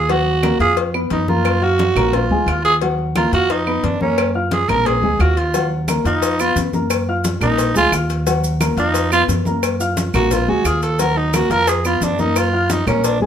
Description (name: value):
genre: latin, salsa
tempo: 176 BPM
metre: 4/4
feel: straight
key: Eb harmonic minor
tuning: A4 = 440 Hz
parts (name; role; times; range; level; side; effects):
- growling tenor saxophone; melody; 0.0-13.3 s; F3 to Bb4; -18 LUFS; right 3 dB; none
- dark grand piano; accompaniment; 0.0-13.3 s; Gb3 to F6; -21 LUFS; left 2 dB; none
- upright bass; bass; 0.0-13.3 s; Bb1 to F#2; -21 LUFS; equal; none
- congas; percussion; 0.1-13.3 s; none; -25 LUFS; left 1 dB; none
- cowbell; percussion; 0.1-13.2 s; none; -25 LUFS; left 9 dB; none
- claves; percussion; 0.4-13.0 s; none; -28 LUFS; right 6 dB; none
- maracas; percussion; 5.5-13.2 s; none; -30 LUFS; right 4 dB; none
room: moderate studio reverb, RT60 0.8 s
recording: minimal, uncompressed stereo recording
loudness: -15 LUFS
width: side -9 dB against mid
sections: 0.0-13.3 A section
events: tenor saxophone solo 0.0-13.3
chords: 0.1 Ebmadd9; 0.8 Bmaj7#11/E#; 1.5 Gbmaj7; 2.1 Bb7; 2.8 Ebmadd9; 3.5 Bmaj9#11/E#; 4.2 Gbmaj7; 4.9 Bb7; 5.5 Ebmadd9; 6.2 Bmaj7#11/E#; 6.9 Gbmaj7; 7.6 Bb7; 8.3 Ebmadd9; 8.9 Bmaj7#11/E#; 9.6 Gbmaj7; 10.3 Bb7; 11.0 Ebmadd9; 11.7 Bb7b9b13/F; 12.4 Gbmaj7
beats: | 0.09 0.43 0.77 1.11 | 1.45 1.79 2.14 2.48 | 2.82 3.16 3.50 3.84 | 4.18 4.52 4.86 5.20 | 5.54 5.88 6.22 6.56 | 6.91 7.25 7.59 7.93 | 8.27 8.61 8.95 9.29 | 9.63 9.97 10.31 10.65 | 10.99 11.34 11.68 12.02 | 12.36 12.70 13.04